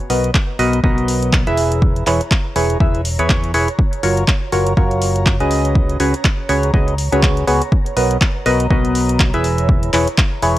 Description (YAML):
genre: piano house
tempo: 122 BPM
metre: 4/4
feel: swing 58% on 16ths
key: unclear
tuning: A4 = 441 Hz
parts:
  - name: ethereal airy pad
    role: texture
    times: 0.0-10.6 s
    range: C#5 to A#5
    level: -30 LUFS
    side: right 3 dB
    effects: ensemble chorus, built-in reverb, phaser, sidechain pumping
  - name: percussive organ stab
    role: riff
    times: 0.1-10.6 s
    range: E3 to E5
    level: -18 LUFS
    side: equal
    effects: chorus, phaser, sidechain pumping
  - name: fingered electric bass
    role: bass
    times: 0.1-10.6 s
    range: E1 to E2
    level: -20 LUFS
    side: equal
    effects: sidechain pumping
  - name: punchy analog drum machine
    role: drums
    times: 0.1-10.5 s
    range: handclaps, hi-hat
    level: -22 LUFS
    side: equal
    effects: overdrive
  - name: electronic kick drum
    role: drums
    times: 0.3-10.3 s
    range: none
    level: -15 LUFS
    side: equal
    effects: overdrive
room: little or no reverb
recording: dry, gritty hardware recording, cassette tape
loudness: -13 LUFS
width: side -15 dB against mid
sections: 0.0-10.6 A section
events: fade-in on ambient pad 0.0-10.6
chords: 0.0 Bmaj7; 1.6 E6; 3.8 F#maj7; 5.5 C#7sus4; 7.7 Bmaj7; 9.4 E6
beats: 0.34 0.84 1.33 | 1.82 2.31 2.80 3.30 | 3.79 4.28 4.77 5.26 | 5.75 6.25 6.74 7.23 | 7.72 8.21 8.71 9.20 | 9.69 10.18